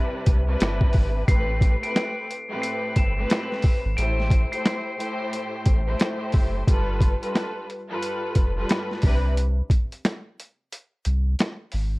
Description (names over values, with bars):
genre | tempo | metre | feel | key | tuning
hip hop, boom-bap hip-hop | 89 BPM | 4/4 | swing 62% on 16ths | unclear | A4 = 440 Hz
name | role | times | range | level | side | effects
warm symphonic string section | accompaniment | 0.0-9.3 s | G2 to C5 | -28 LUFS | left 1 dB | high-pass filter, low-pass filter
soft dub sub bass | bass | 0.3-12.0 s | F1 to C2 | -24 LUFS | equal | none
boom bap sampler-style drum kit | drums | 0.3-11.9 s | hi-hat, kick drum, snare drum | -21 LUFS | equal | none
glockenspiel with rubber mallets | melody | 1.3-6.2 s | C7 to E7 | -31 LUFS | left 1 dB | high-pass filter, low-pass filter, digital delay
room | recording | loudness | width
little or no reverb | worn, warbling old tape, cassette tape, warbly pitch drift | -21 LUFS | side -23 dB against mid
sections
0.0-12.0 A section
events
break 9.4-12.0; kick muted 10.7-12.0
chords
0.0 Cmaj7; 1.3 Am9; 4.0 C6; 6.7 G7; 9.0 N.C.